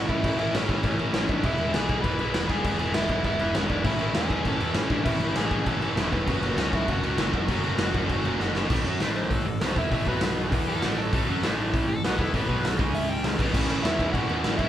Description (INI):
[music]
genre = punk rock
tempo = 198 BPM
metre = 4/4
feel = straight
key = A major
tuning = A4 = 438 Hz
[part]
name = overdriven electric guitar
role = melody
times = 0.0-14.7 s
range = G#3 to B5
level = -32 LUFS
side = equal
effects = none
[part]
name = distorted electric guitar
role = riff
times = 0.0-14.7 s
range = A2 to F#4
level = -27 LUFS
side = equal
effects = distortion
[part]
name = fuzz picked electric bass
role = bass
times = 0.0-14.7 s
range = E1 to F#2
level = -31 LUFS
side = equal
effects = overdrive
[part]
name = raw garage drum kit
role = drums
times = 0.1-14.7 s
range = crash cymbal, hi-hat, kick drum, snare drum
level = -27 LUFS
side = equal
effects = none
[sound]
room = light reverb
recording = band playing live in one room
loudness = -23 LUFS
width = side -11 dB against mid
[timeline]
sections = 0.0-8.7 A section; 8.7-13.5 B section; 13.5-14.7 A section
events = drum fill 8.4-8.7; overdriven electric guitar solo 8.7-13.5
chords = 0.0 A; 1.4 E; 3.8 A; 6.3 F#m; 8.7 A5; 10.1 B5; 10.5 E5; 10.8 A5; 12.5 B5; 12.8 C#5; 13.4 A5; 13.5 A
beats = | 0.23 0.53 0.83 1.14 | 1.44 1.74 2.04 2.34 | 2.64 2.94 3.25 3.55 | 3.85 4.15 4.45 4.76 | 5.06 5.36 5.67 5.97 | 6.27 6.58 6.88 7.18 | 7.49 7.79 8.09 8.40 | 8.70 9.00 9.31 9.61 | 9.91 10.22 10.52 10.82 | 11.12 11.43 11.73 12.03 | 12.33 12.63 12.94 13.24 | 13.54 13.84 14.14 14.44